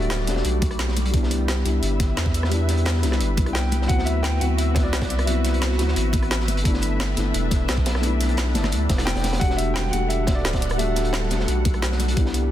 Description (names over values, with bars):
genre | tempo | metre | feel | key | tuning
liquid drum and bass | 174 BPM | 4/4 | straight | E minor | A4 = 440 Hz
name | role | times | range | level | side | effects
warm grand piano | melody | 0.0-0.7, 3.5-6.3, 9.1-11.8 s | D5 to G5 | -30 LUFS | equal | digital delay
felt-muted upright piano | accompaniment | 0.0-12.5 s | F#3 to F#4 | -27 LUFS | left 2 dB | digital delay
lush unison pad | sustained chords | 0.0-12.5 s | G3 to F#5 | -31 LUFS | equal | chorus, phaser, sidechain pumping
saturated sub bass | bass | 0.0-12.5 s | D1 to E2 | -23 LUFS | equal | none
crunchy breakbeat drum kit | drums | 0.0-12.4 s | hi-hat, snare drum | -32 LUFS | equal | high-pass filter on hats, high-pass filter on snare, high-pass filter on room
drum and bass drum kit | drums | 0.1-12.4 s | hi-hat, rim click, snare drum | -29 LUFS | equal | overdrive
electronic kick drum | drums | 0.6-12.2 s | none | -23 LUFS | equal | overdrive
congas | percussion | 0.6-12.1 s | none | -32 LUFS | left 4 dB | none
room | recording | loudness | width
light reverb | dense, heavily limited modern master | -19 LUFS | side -12 dB against mid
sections
0.0-12.5 A section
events
none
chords
0.0 Em11; 1.1 Cmaj7; 3.9 D13; 6.5 G6; 9.4 Em11